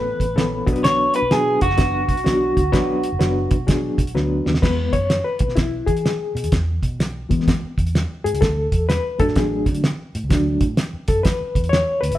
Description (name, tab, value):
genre	uptempo 1960s-style soul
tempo	127 BPM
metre	4/4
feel	swing 64% on 8ths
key	E mixolydian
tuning	A4 = 440 Hz
part	electric guitar through a small old amp	melody	0.0-4.1 s	F#4 to C#5	-21 LUFS	equal	none
part	overdriven reed electric piano	accompaniment	0.0-12.2 s	E3 to E5	-22 LUFS	left 2 dB	fast tremolo
part	vintage muted fingered electric bass	bass	0.0-12.2 s	F#1 to E3	-25 LUFS	equal	none
part	cloth-damped thuddy drum kit	drums	0.2-12.2 s	crash cymbal, hi-hat, kick drum, snare drum	-20 LUFS	equal	none
room	moderate stone room reverb, RT60 0.9 s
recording	band playing live in one room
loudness	-17 LUFS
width	side -14 dB against mid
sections	0.0-4.6 A section; 4.6-12.2 B section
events	drum fill 4.2-4.6; reed electric piano solo 4.6-12.2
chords	0.0 Aadd9; 0.6 Bm; 4.6 E; 8.4 D